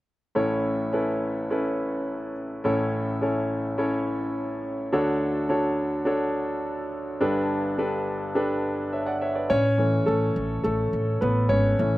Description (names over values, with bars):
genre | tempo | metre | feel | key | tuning
pop | 105 BPM | 4/4 | straight | A major | A4 = 441 Hz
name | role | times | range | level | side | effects
clear concert grand piano | accompaniment | 0.4-12.0 s | G1 to F#5 | -24 LUFS | equal | none
upright bass | bass | 9.5-12.0 s | G#1 to A1 | -25 LUFS | equal | none
room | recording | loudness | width
little or no reverb | recorded outdoors, with no room sound | -23 LUFS | side -17 dB against mid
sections
0.4-9.5 A section; 9.5-12.0 B section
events
grand piano solo 9.5-12.0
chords
0.4 A; 4.9 Dmaj7; 7.2 Gadd9; 9.5 A